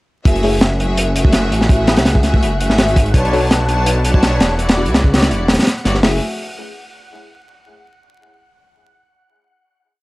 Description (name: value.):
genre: drum and bass, jungle.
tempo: 166 BPM.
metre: 4/4.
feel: swing 54% on 16ths.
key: F# minor.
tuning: A4 = 440 Hz.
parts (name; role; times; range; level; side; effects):
rich symphonic string section; sustained chords; 0.2-6.2 s; G3 to A5; -20 LUFS; equal; none.
wind-like tuned noise texture; texture; 0.8-6.0 s; F#5 to F#6; -31 LUFS; equal; built-in reverb.
detuned saw bass; bass; 0.3-6.2 s; E1 to C#2; -17 LUFS; equal; none.
crunchy breakbeat drum kit; drums; 0.3-6.1 s; hi-hat, kick drum, snare drum; -15 LUFS; equal; none.
deep mellow chord stab; stabs; 0.4-6.2 s; G3 to C#5; -23 LUFS; left 2 dB; chorus, phaser, dub echo.
room: small room ambience.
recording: dry, gritty hardware recording, vinyl crackle.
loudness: -12 LUFS.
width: side -20 dB against mid.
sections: 0.3-6.0 drop; 6.0-7.5 final chord.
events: drop 0.3-6.0.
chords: 0.3 F#m9; 3.1 Bm9; 4.6 Em9; 6.0 F#m9.